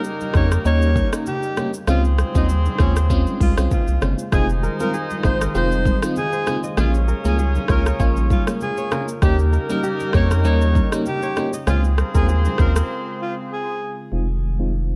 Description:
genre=afrobeats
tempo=98 BPM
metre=4/4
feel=swing 55% on 16ths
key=unclear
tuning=A4 = 436 Hz
part: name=breathy alto saxophone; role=melody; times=0.0-14.0 s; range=Db4 to Db5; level=-29 LUFS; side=equal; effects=tape echo
part: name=clear horn section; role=second line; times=0.0-13.8 s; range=Bb3 to Eb5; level=-33 LUFS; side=equal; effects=none
part: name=FM electric piano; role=accompaniment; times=0.0-14.7 s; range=G3 to F4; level=-28 LUFS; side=equal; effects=chorus, tremolo, phaser, low-pass filter
part: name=warm analog pad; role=sustained chords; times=0.0-15.0 s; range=Db3 to C5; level=-34 LUFS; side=equal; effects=chorus, low-pass filter
part: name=afro-pop drum kit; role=drums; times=0.0-12.9 s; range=hi-hat, kick drum, rim click, shaker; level=-23 LUFS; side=equal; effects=none
part: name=congas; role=percussion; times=0.2-12.7 s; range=none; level=-32 LUFS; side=equal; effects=none
part: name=round analog bass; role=bass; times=0.3-15.0 s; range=F1 to F2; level=-21 LUFS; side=equal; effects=none
part: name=kora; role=riff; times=4.3-14.0 s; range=G4 to Eb5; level=-32 LUFS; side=equal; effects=tape echo
room=little or no reverb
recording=dark, warm production, tape saturation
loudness=-20 LUFS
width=mono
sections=0.0-14.1 A section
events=break 12.9-14.1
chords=0.0 Eb7; 1.9 Dbmaj7; 4.3 Fm7; 6.8 Bbm7; 9.2 Eb7; 11.7 Dbmaj7; 14.1 Fm7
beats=0.04 0.65 1.26 | 1.88 2.49 3.10 3.71 | 4.33 4.94 5.55 6.16 | 6.77 7.39 8.00 8.61 | 9.22 9.84 10.45 11.06 | 11.67 12.28 12.90 13.51 | 14.12 14.73

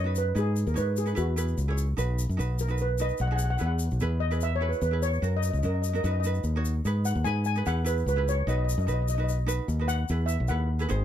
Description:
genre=calypso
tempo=148 BPM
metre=4/4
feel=straight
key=unclear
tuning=A4 = 439 Hz
part: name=steel pan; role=melody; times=0.0-10.7 s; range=F#4 to G#5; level=-31 LUFS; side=left 1 dB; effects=plate reverb
part: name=ukulele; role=accompaniment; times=0.0-11.0 s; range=C#4 to C#5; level=-35 LUFS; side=right 4 dB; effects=none
part: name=fingered electric bass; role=bass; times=0.0-11.0 s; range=G#1 to G#2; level=-26 LUFS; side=equal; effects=none
part: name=tube shaker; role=percussion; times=0.2-11.0 s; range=none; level=-41 LUFS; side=left 5 dB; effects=none
room=light reverb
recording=dark, warm production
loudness=-25 LUFS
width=side -10 dB against mid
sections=0.0-11.0 A section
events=steel pan solo 0.0-11.0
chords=0.4 G#m; 1.2 Eadd9; 2.0 B; 3.6 E; 5.2 F#; 6.0 B/F#; 6.8 G#m; 7.7 E; 8.5 B; 10.1 E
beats=| 0.37 0.78 1.18 1.59 | 1.99 2.40 2.80 3.21 | 3.61 4.02 4.42 4.83 | 5.23 5.64 6.04 6.45 | 6.85 7.25 7.66 8.06 | 8.47 8.87 9.28 9.68 | 10.09 10.49 10.90

